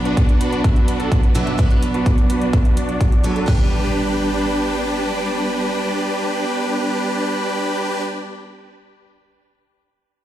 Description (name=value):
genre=EDM, festival progressive house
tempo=127 BPM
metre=4/4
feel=straight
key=G major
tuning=A4 = 439 Hz
part: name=picked steel-string acoustic guitar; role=accompaniment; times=0.0-8.3 s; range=B2 to B4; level=-25 LUFS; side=right 3 dB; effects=sidechain pumping, ping-pong delay
part: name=dark studio string section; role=sustained chords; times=0.0-8.0 s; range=F#3 to D4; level=-26 LUFS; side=equal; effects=sidechain pumping
part: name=supersaw chords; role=riff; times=0.1-8.0 s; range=D4 to E5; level=-22 LUFS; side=equal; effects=sidechain pumping, low-pass filter, ping-pong delay
part: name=big-room dance drum kit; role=drums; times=0.1-3.6 s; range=crash cymbal, hi-hat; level=-38 LUFS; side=equal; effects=none
part: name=electronic kick drum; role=drums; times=0.2-3.6 s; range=none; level=-15 LUFS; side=equal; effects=none
part: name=impact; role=sound effects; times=3.5-8.3 s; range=none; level=-26 LUFS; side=equal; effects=none
room=moderate scoring stage reverb, RT60 1.7 s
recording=played on a big sound system in a bare room, stone room reverb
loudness=-16 LUFS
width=side -12 dB against mid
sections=0.0-3.5 A section; 3.5-7.3 B section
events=filter sweep on supersaw synth 0.0-3.5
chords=0.0 Bm; 3.5 G